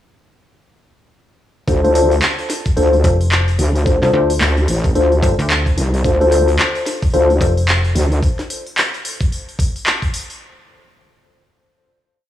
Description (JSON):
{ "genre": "glitch hop", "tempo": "110 BPM", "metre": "4/4", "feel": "swing 60% on 16ths", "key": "D minor", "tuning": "A4 = 440 Hz", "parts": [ { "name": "mellow tine electric piano", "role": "stabs", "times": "1.7-7.5 s", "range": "D4 to C5", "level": "-17 LUFS", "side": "left 2 dB", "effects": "analog chorus, sidechain pumping, tape echo" }, { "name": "wobble bass", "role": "bass", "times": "1.7-8.2 s", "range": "A1 to D2", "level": "-16 LUFS", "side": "equal", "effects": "chorus, overdrive" }, { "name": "electronic kick drum", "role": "drums", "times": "1.7-10.1 s", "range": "none", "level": "-18 LUFS", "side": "equal", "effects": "none" }, { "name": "glitchy drum kit", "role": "drums", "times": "1.7-10.4 s", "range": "handclaps, hi-hat, snare drum", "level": "-20 LUFS", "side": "equal", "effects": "none" }, { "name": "slap-like FM bass", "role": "bass", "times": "3.0-7.9 s", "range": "F1 to D2", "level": "-16 LUFS", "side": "equal", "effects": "none" } ], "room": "light reverb", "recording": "dry, gritty hardware recording, small room ambience", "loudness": "-13 LUFS", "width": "side -12 dB against mid", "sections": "1.7-10.4 drop", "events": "drop 1.7-10.4", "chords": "1.7 Dm7", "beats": "| 1.68 2.22 2.77 3.31 | 3.86 4.41 4.95 5.50 | 6.04 6.59 7.13 7.68 | 8.22 8.77 9.31 9.86" }